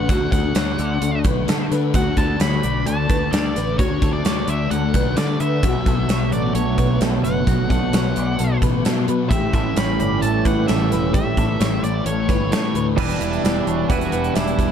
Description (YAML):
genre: rock, shoegaze and dream pop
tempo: 131 BPM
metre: 4/4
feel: straight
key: D major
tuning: A4 = 440 Hz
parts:
  - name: octave-fuzz lead guitar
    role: melody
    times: 0.0-14.7 s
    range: D4 to B5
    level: -27 LUFS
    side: equal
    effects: distortion, analog delay
  - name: electric guitar through a small old amp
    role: arpeggios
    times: 0.0-14.7 s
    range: F#4 to E5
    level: -28 LUFS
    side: right 3 dB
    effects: ensemble chorus, analog delay
  - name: thick fuzz guitar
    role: riff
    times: 0.0-14.7 s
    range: E2 to D4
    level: -23 LUFS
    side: left 11 dB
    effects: distortion, ensemble chorus
  - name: growling fingered electric bass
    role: bass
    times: 0.0-14.7 s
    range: E1 to D3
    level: -24 LUFS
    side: right 1 dB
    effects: overdrive
  - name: gated 80s drum kit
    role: drums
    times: 0.1-14.7 s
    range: crash cymbal, hi-hat, kick drum, snare drum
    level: -21 LUFS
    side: right 1 dB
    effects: none
  - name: twangy electric guitar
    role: riff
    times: 5.6-14.7 s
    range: A2 to B4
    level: -24 LUFS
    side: right 10 dB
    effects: reverse reverb
room: small room reverb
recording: dark, warm production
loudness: -17 LUFS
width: side -8 dB against mid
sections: 0.0-13.0 A section; 13.0-14.7 B section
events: none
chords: 0.0 Dmaj7; 5.6 Bm7; 9.3 A7; 13.0 Em7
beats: | 0.09 0.55 1.01 1.48 | 1.94 2.40 2.87 3.33 | 3.79 4.25 4.71 5.17 | 5.63 6.09 6.55 7.01 | 7.47 7.93 8.39 8.85 | 9.31 9.77 10.23 10.69 | 11.14 11.61 12.06 12.52 | 12.98 13.44 13.90 14.36